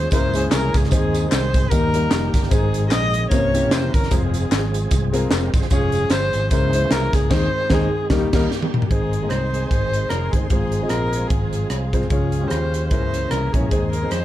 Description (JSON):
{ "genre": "uptempo gospel", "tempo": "150 BPM", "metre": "4/4", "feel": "swing 57% on 8ths", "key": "Ab major", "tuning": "A4 = 440 Hz", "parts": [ { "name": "warm viola", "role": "melody", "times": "0.0-14.2 s", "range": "G4 to Eb5", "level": "-24 LUFS", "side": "equal", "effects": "tape echo" }, { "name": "overdriven tonewheel organ", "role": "sustained chords", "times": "0.0-14.2 s", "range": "C3 to C5", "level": "-30 LUFS", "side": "right 5 dB", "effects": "slow rotary speaker, chorus vibrato" }, { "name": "fingered electric bass", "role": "bass", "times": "0.0-14.2 s", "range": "F1 to F2", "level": "-23 LUFS", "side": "equal", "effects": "none" }, { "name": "warm grand piano", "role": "accompaniment", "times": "0.1-14.2 s", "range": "Ab2 to Eb5", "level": "-25 LUFS", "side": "left 3 dB", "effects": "none" }, { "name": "crisp fusion drum kit", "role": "drums", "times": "0.1-14.2 s", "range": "crash cymbal, hi-hat, kick drum, rim click, snare drum, toms", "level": "-21 LUFS", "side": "equal", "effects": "none" }, { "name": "tambourine and handclaps", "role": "percussion", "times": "0.1-7.2 s", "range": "none", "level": "-32 LUFS", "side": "left 4 dB", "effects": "none" }, { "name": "warm studio string section", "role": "sustained chords", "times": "8.9-14.2 s", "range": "Db4 to C6", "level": "-38 LUFS", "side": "left 2 dB", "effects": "none" } ], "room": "light reverb", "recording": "dark, warm production", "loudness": "-17 LUFS", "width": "side -13 dB against mid", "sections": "0.0-8.9 A section; 8.9-14.2 B section", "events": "band accent 7.3-8.9; drum fill 8.5-8.9", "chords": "0.1 Dbm6; 0.9 Ab/Eb; 1.7 Eb; 2.5 Ab; 3.3 C7b9; 4.1 Fm; 5.7 Db/F; 6.5 Dbm6; 7.3 Ab/Eb; 8.1 Eb; 8.9 Ab; 10.5 Fm/Ab; 12.1 Db; 12.9 Dbm6; 13.7 Ab/Eb" }